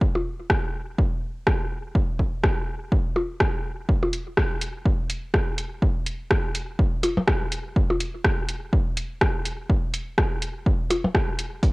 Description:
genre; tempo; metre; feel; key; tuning
techno; 124 BPM; 4/4; swing 58% on 16ths; none; none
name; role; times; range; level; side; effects
electronic kick drum; drums; 0.0-11.7 s; none; -23 LUFS; equal; overdrive, cassette tape
percussion blips; percussion; 0.2, 3.2-4.1, 7.0-8.0, 10.9-11.1 s; none; -25 LUFS; left 1 dB; cassette tape, analog delay
punchy analog drum machine; drums; 0.5-11.7 s; hi-hat, rim click; -25 LUFS; equal; overdrive, cassette tape
room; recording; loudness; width
light reverb; home recording on cassette; -22 LUFS; side -23 dB against mid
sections
0.0-11.7 A section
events
none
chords
none

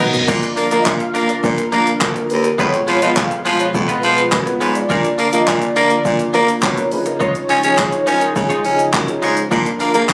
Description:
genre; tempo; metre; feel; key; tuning
dance-pop; 104 BPM; 4/4; straight; unclear; A4 = 440 Hz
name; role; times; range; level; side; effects
warm velvety synth lead; melody; 0.0-10.1 s; Ab4 to F5; -24 LUFS; equal; chorus, tape echo
warm baby grand piano; accompaniment; 0.0-10.1 s; F3 to Cb5; -26 LUFS; equal; sidechain pumping
ensemble organ-string; sustained chords; 0.0-10.1 s; Cb3 to Bb4; -29 LUFS; equal; ensemble chorus, sidechain pumping
direct-recorded clean electric guitar; riff; 0.0-10.1 s; F#3 to D5; -25 LUFS; equal; subtle chorus
deep house drum kit; drums; 0.1-10.1 s; crash cymbal, handclaps, hi-hat, kick drum, shaker, toms; -24 LUFS; equal; none
raspy baritone saxophone; bass; 0.3-10.1 s; D2 to Db4; -19 LUFS; equal; sidechain pumping
room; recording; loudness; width
light reverb; recorded on a phone in the room, club reverb; -16 LUFS; mono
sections
0.3-10.1 A section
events
drum fill 0.0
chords
0.3 Bb; 2.6 Fdim; 4.9 Bb; 6.9 Dbadd9; 9.5 Bb

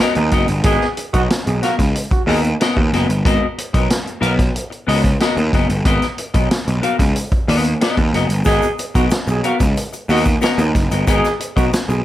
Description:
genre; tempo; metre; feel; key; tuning
funk; 92 BPM; 4/4; straight; G# dorian; A4 = 440 Hz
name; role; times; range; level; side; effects
semi-hollow electric guitar; accompaniment; 0.0-11.9 s; B3 to E#5; -20 LUFS; left 3 dB; wide subtle chorus
vintage drum kit; drums; 0.0-11.9 s; hi-hat, kick drum, snare drum; -19 LUFS; equal; none
growling trombone; second line; 0.2-2.4, 8.4-12.0 s; D#4 to G#4; -22 LUFS; right 3 dB; none
fuzz picked electric bass; bass; 0.2-12.0 s; F#1 to D#2; -18 LUFS; equal; overdrive
egg shaker; percussion; 8.4-12.0 s; none; -36 LUFS; left 7 dB; none
room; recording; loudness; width
light reverb; none; -14 LUFS; side -14 dB against mid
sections
0.0-12.0 A section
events
none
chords
0.0 G#m9 (rootless)

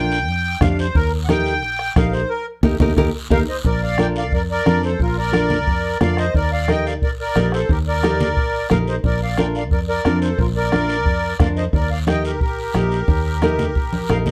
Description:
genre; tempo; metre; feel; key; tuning
latin, cumbia; 178 BPM; 4/4; straight; Bb major; A4 = 440 Hz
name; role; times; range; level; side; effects
accordion; melody; 0.0-14.3 s; F4 to G5; -25 LUFS; equal; light tremolo tuning
nylon-string guitar; accompaniment; 0.0-14.3 s; D4 to Bb4; -24 LUFS; equal; none
fingered electric bass; bass; 0.0-14.3 s; Bb1 to F2; -24 LUFS; equal; none
guiro; percussion; 0.1-14.3 s; none; -39 LUFS; equal; none
congas; percussion; 0.3-14.3 s; none; -26 LUFS; equal; none
bombo; percussion; 0.6-14.3 s; none; -24 LUFS; equal; none
room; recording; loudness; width
light reverb; dark, warm production; -19 LUFS; mono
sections
0.0-3.7 A section; 3.7-14.3 B section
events
accordion solo 0.0-3.7; band accent 2.3-3.7; drum fill 2.8-3.7, 13.9-14.3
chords
0.0 Bb; 1.0 Eb; 3.7 Bb; 6.3 Eb; 9.0 Bb; 11.7 Eb

